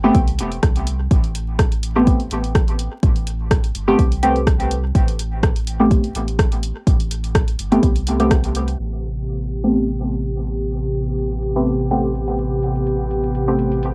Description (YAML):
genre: dub techno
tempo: 125 BPM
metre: 4/4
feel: swing 54% on 16ths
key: A minor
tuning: A4 = 440 Hz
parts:
  - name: deep mellow chord stab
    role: stabs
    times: 0.0-13.7 s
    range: A3 to G4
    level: -22 LUFS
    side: equal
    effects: chorus, phaser, dub echo
  - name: soft dub sub bass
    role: bass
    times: 0.0-13.9 s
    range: E1 to C2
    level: -26 LUFS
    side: equal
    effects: sidechain pumping
  - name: deep house drum kit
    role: drums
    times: 0.1-13.9 s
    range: crash cymbal, hi-hat, rim click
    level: -28 LUFS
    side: equal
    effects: cassette tape
  - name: electronic kick drum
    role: drums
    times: 0.1-8.4 s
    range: none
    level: -19 LUFS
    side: equal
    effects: cassette tape
  - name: airy breathy pad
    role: sustained chords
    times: 8.8-13.9 s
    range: C3 to G4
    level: -25 LUFS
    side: equal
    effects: chorus, sidechain pumping
room: light reverb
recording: home recording on cassette, vinyl crackle, low-pass filter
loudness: -19 LUFS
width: mono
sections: 0.0-8.8 A section; 8.8-13.9 B section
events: filter sweep on analog synth pad 8.8-13.9; filter sweep 8.8-13.9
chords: 0.0 Am9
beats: 0.15 0.63 | 1.11 1.59 2.07 2.55 | 3.03 3.51 3.99 4.47 | 4.95 5.43 5.91 6.39 | 6.87 7.35 7.83 8.31 | 8.79 9.27 9.75 10.23 | 10.71 11.19 11.67 12.15 | 12.63 13.11 13.59